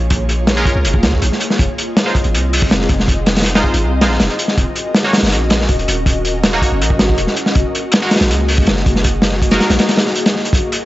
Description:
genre	drum and bass, jungle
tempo	161 BPM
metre	4/4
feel	straight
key	unclear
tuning	A4 = 437 Hz
part	long sustained 808-style bass	bass	0.0-10.6 s	Eb1 to Eb2	-18 LUFS	equal	none
part	ethereal airy pad	sustained chords	0.1-10.8 s	Bb3 to Eb5	-20 LUFS	left 1 dB	ensemble chorus, built-in reverb
part	crunchy breakbeat drum kit	drums	0.1-10.8 s	hi-hat, kick drum, snare drum	-14 LUFS	equal	none
part	band-passed chord stab	stabs	0.6-10.0 s	Ab3 to Db5	-22 LUFS	right 1 dB	chorus, dub echo
part	electronic hi-hat	drums	10.5-10.8 s	none	-31 LUFS	equal	none
room	studio reverb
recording	dry, gritty hardware recording, transformer saturation, vinyl crackle, nothing above 7.9 kHz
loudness	-12 LUFS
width	side -16 dB against mid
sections	0.0-10.8 A section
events	none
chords	0.0 Bbm7; 1.6 Fm7; 4.6 Ebm7; 7.6 Gb69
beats	| 0.10 0.47 0.85 1.22 | 1.59 1.97 2.34 2.71 | 3.08 3.46 3.83 4.20 | 4.57 4.95 5.32 5.69 | 6.06 6.44 6.81 7.18 | 7.55 7.93 8.30 8.67 | 9.05 9.42 9.79 10.16 | 10.54

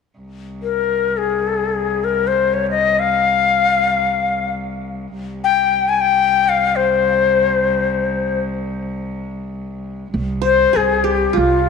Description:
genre	Arabic maqam ensemble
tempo	free time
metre	none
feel	none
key	unclear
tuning	A4 = 442 Hz
part	rich cello	drone	0.2-11.7 s	C2	-26 LUFS	equal	none
part	breathy bright ney	melody	0.6-11.7 s	F4 to Ab5	-15 LUFS	left 6 dB	none
part	upright bass	bass	10.1-11.7 s	C2	-22 LUFS	right 2 dB	tube saturation
part	qanun	second line	10.4-11.7 s	F4 to C5	-20 LUFS	right 10 dB	none
room	wet echo chamber reverb, RT60 1.9 s, studio ambience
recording	1960s-style stereo with parts hard left and right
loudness	-15 LUFS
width	side -5 dB against mid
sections	0.2-10.1 A section; 10.1-11.7 B section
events	none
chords	none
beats	free time

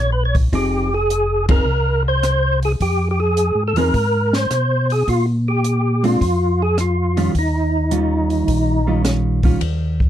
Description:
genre	soul jazz organ trio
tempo	106 BPM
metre	4/4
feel	swing 69% on 8ths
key	Eb mixolydian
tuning	A4 = 445 Hz
part	percussive tonewheel organ	melody	0.0-9.0 s	Eb4 to Db5	-20 LUFS	equal	slow rotary speaker, overdrive, chorus vibrato
part	mellow tonewheel organ	bass	0.0-10.1 s	F1 to Cb3	-19 LUFS	equal	chorus vibrato, slow rotary speaker
part	compact cocktail drum kit	drums	0.3-10.1 s	hi-hat, kick drum, ride cymbal, rim click, snare drum	-21 LUFS	equal	none
part	vintage hollow-body jazz guitar	accompaniment	0.5-9.6 s	Eb3 to Ab4	-21 LUFS	right 2 dB	none
room	light reverb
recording	dark, warm production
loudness	-15 LUFS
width	side -11 dB against mid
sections	0.0-9.6 A section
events	band accent 1.4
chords	0.0 Eb7(no3) (rootless); 0.5 Fm7; 5.1 Bb5; 7.3 Eb9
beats	| 0.53 1.09 1.66 2.23 | 2.80 3.37 3.94 4.51 | 5.07 5.64 6.21 6.78 | 7.34 7.91 8.48 9.04 | 9.61

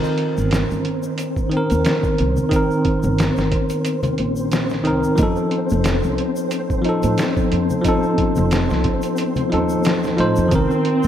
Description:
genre	trip hop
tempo	90 BPM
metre	4/4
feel	swing 55% on 16ths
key	C dorian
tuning	A4 = 440 Hz
part	bell-like tine electric piano	accompaniment	0.0-11.1 s	Eb3 to C5	-19 LUFS	equal	tremolo, tape echo
part	tube shaker and congas	percussion	0.0-11.1 s	none	-30 LUFS	left 1 dB	none
part	flickering grainy texture	texture	0.5-11.1 s	C4 to C5	-24 LUFS	left 1 dB	built-in reverb
part	trip hop sampler-style drum kit	drums	0.2-11.0 s	hi-hat, kick drum, snare drum	-23 LUFS	equal	none
part	upright bass	bass	0.4-11.1 s	F1 to A2	-22 LUFS	equal	none
part	muted symphonic string section	sustained chords	10.5-11.1 s	C4	-22 LUFS	right 1 dB	vintage 12-bit sampler grit
room	moderate lush hall reverb, RT60 2.0 s, digital ambience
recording	rough home demo mix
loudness	-16 LUFS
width	side -10 dB against mid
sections	0.0-11.1 A section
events	none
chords	0.0 Cm7; 5.2 F7; 10.5 Cm7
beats	0.52 1.18 1.85 | 2.52 3.18 3.85 4.52 | 5.18 5.85 6.52 7.18 | 7.85 8.52 9.18 9.85 | 10.52

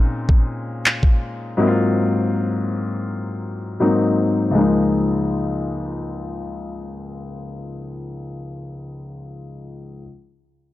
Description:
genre	contemporary R&B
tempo	81 BPM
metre	4/4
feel	straight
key	Db major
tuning	A4 = 439 Hz
part	clear concert grand piano	accompaniment	0.0-10.0 s	Db2 to F4	-21 LUFS	left 2 dB	low-pass filter
part	smooth R&B drum kit	drums	0.3-1.2 s	handclaps, kick drum	-15 LUFS	equal	none
room	little or no reverb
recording	dry, gritty hardware recording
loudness	-18 LUFS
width	side -15 dB against mid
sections	0.0-4.5 A section; 4.5-7.5 B section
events	filter sweep on grand piano 0.0-4.5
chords	0.0 Bbm11; 1.6 Ab13; 3.8 Ab9; 4.5 Db6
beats	0.10 0.84 | 1.58 2.32 3.06 3.81 | 4.55 5.29 6.03 6.77

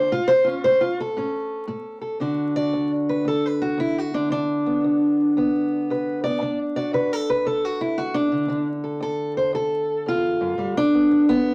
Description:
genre	acoustic country blues, solo or duo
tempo	115 BPM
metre	4/4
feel	swing 66% on 8ths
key	D major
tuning	A4 = 440 Hz
part	fingerpicked steel-string acoustic guitar	solo	0.0-11.5 s	D2 to D5	-22 LUFS	equal	none
room	wet studio reverb, RT60 0.5 s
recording	vinyl crackle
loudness	-22 LUFS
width	mono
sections	0.0-2.2 A section; 2.2-11.5 B section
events	steel-string acoustic guitar solo 2.2-11.5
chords	0.1 A; 2.2 D; 4.3 Bm/D; 6.4 D; 10.6 G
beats	| 0.11 0.63 1.16 1.68 | 2.21 2.73 3.25 3.78 | 4.30 4.83 5.35 5.87 | 6.40 6.92 7.44 7.97 | 8.49 9.02 9.54 10.06 | 10.59 11.11

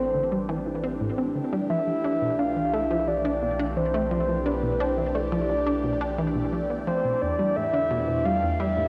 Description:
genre	ambient, sequencer-driven space music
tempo	87 BPM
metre	4/4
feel	straight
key	unclear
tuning	A4 = 437 Hz
part	soft octave-layered synth lead	melody	0.0-8.9 s	B4 to F5	-29 LUFS	equal	chorus, cassette tape, tape echo
part	phased analog pad	sustained chords	0.0-8.9 s	E3 to D5	-33 LUFS	equal	phaser, chorus, cassette tape
part	analog pluck	riff	0.0-8.8 s	E2 to D4	-31 LUFS	equal	chorus, cassette tape, tape echo
part	round analog bass	bass	0.0-8.9 s	A1 to E2	-37 LUFS	equal	none
room	wet lush hall reverb, RT60 2.3 s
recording	home recording on cassette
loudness	-26 LUFS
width	mono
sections	0.0-8.9 A section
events	none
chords	0.0 Am; 1.7 Bdim; 7.2 Em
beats	0.32 1.01 | 1.70 2.39 3.08 3.77 | 4.46 5.15 5.84 6.53 | 7.22 7.91 8.60

